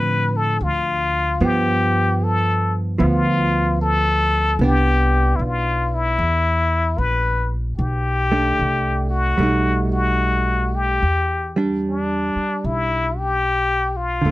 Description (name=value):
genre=jazz ballad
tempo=75 BPM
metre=4/4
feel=swing 66% on 8ths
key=E minor from 11.0 s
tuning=A4 = 438 Hz
part: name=trumpet with plunger mute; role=melody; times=0.0-14.3 s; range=D4 to B4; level=-20 LUFS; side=left 3 dB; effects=none
part: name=archtop guitar, miked and amplified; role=accompaniment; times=0.0-14.3 s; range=D3 to D#4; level=-23 LUFS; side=right 3 dB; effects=none
part: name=upright bass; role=bass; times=0.0-14.3 s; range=Bb1 to A2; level=-22 LUFS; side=equal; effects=none
room=little or no reverb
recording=close, detailed microphones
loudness=-17 LUFS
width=side -17 dB against mid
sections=0.0-11.0 A section; 11.0-14.3 B section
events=none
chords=0.0 Dm7; 1.4 G9; 4.6 Cmaj9; 7.8 Am11/B; 9.4 B7b13; 11.0 Em7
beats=0.60 | 1.40 2.20 3.00 3.80 | 4.60 5.39 6.19 6.98 | 7.78 8.57 9.38 10.20 | 11.02 11.82 12.63 13.44 | 14.24